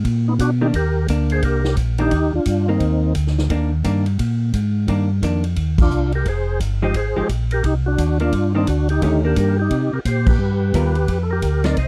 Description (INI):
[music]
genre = soul jazz organ trio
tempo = 174 BPM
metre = 4/4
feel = swing 62% on 8ths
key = C minor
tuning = A4 = 440 Hz
[part]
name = mellow tonewheel organ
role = bass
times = 0.0-11.9 s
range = F1 to C3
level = -21 LUFS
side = equal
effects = slow rotary speaker
[part]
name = swinging big-band drum kit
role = drums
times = 0.0-11.9 s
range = crash cymbal, hi-hat, kick drum, ride cymbal, snare drum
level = -24 LUFS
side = equal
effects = none
[part]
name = percussive tonewheel organ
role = melody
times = 0.3-3.1, 5.8-11.9 s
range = B3 to Eb5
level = -24 LUFS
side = equal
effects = overdrive, chorus vibrato, slow rotary speaker
[part]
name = vintage hollow-body jazz guitar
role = accompaniment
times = 0.6-11.8 s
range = D3 to A#4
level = -25 LUFS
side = equal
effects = none
[sound]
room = little or no reverb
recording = dry, close 1970s-style studio recording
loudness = -19 LUFS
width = mono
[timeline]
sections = 0.7-11.9 A section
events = band accent 5.7, 10.2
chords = 0.0 G(#9) (rootless); 0.7 Cm9; 6.3 Fm9; 7.6 Cm9; 10.4 G7#9